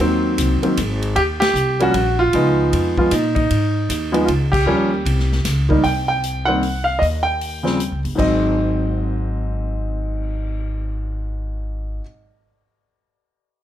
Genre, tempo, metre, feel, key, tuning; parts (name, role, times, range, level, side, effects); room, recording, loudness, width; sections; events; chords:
jazz piano trio; 154 BPM; 3/4; swing 64% on 8ths; Ab mixolydian; A4 = 439 Hz
warm grand piano; melody; 0.0-12.0 s; Ab2 to G5; -19 LUFS; right 1 dB
upright bass; bass; 0.0-12.0 s; G1 to Bb2; -22 LUFS; equal
swinging big-band drum kit; drums; 0.0-10.4 s; crash cymbal, cymbal swell, hi-hat, kick drum, ride cymbal, snare drum; -26 LUFS; left 1 dB
light reverb; -17 LUFS; side -11 dB against mid
0.0-5.8 A section; 5.8-8.2 B section; 8.2-10.5 C section
band accent 1.4, 4.5
0.0 Ab7; 1.2 Eb; 2.3 Db7; 3.5 Ab5; 4.3 N.C.; 4.7 Eb7; 5.8 C5; 7.0 Eb; 8.2 Ab7